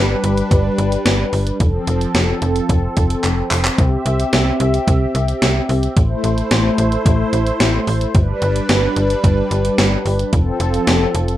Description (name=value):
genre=synth-pop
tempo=110 BPM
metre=4/4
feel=straight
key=unclear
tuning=A4 = 440 Hz
part: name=brassy analog pad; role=sustained chords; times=0.0-11.4 s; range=F3 to E5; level=-19 LUFS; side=equal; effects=chorus, plate reverb
part: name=slap-like FM bass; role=bass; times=0.0-11.4 s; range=F1 to C2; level=-18 LUFS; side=equal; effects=none
part: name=gated 80s digital drum machine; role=drums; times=0.2-11.4 s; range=handclaps, hi-hat, kick drum, snare drum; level=-18 LUFS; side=equal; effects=gated reverb, gated reverb snare
room=moderate small room reverb, RT60 0.5 s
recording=rough home demo mix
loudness=-14 LUFS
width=side -13 dB against mid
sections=0.0-11.4 A section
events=drum fill 3.2-3.8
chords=0.0 G; 1.6 F; 3.8 C; 6.0 Am; 8.1 G; 10.3 F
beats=0.51 1.06 | 1.60 2.15 2.69 3.24 | 3.78 4.33 4.87 5.42 | 5.96 6.51 7.06 7.60 | 8.15 8.69 9.24 9.78 | 10.33 10.87